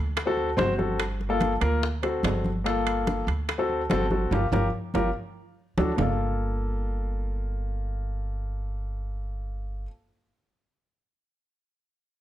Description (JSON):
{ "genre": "Afro-Cuban jazz", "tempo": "144 BPM", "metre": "4/4", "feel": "straight", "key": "G minor", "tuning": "A4 = 440 Hz", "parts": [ { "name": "upright bass", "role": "bass", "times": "0.0-9.9 s", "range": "G1 to D2", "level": "-29 LUFS", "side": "equal", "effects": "none" }, { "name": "bongos", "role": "percussion", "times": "0.2-6.1 s", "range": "none", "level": "-35 LUFS", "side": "left 5 dB", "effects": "none" }, { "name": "congas", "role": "percussion", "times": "0.2-6.1 s", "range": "none", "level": "-32 LUFS", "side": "equal", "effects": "none" }, { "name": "timbales", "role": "percussion", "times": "0.2-6.1 s", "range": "none", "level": "-34 LUFS", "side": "right 8 dB", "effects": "none" }, { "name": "warm grand piano", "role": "accompaniment", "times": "0.3-9.9 s", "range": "Bb3 to C5", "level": "-28 LUFS", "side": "left 2 dB", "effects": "none" } ], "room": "light reverb", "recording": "dark, warm production", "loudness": "-25 LUFS", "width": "side -12 dB against mid", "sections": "0.0-6.0 A section; 6.0-9.3 B section", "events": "band accent 4.3-6.0; grand piano fill 5.1-6.0; drum fill 5.4-6.0", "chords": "0.2 D7; 1.0 Gm7; 1.8 D7; 2.7 Gm7; 3.5 D7; 4.3 Gm7; 5.1 D; 6.0 Gm7", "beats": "0.16 0.58 | 0.99 1.41 1.82 2.24 | 2.65 3.07 3.48 3.90 | 4.32 4.73 5.15 5.57 | 5.98 6.40 6.82 7.23 | 7.65 8.07 8.48 8.90" }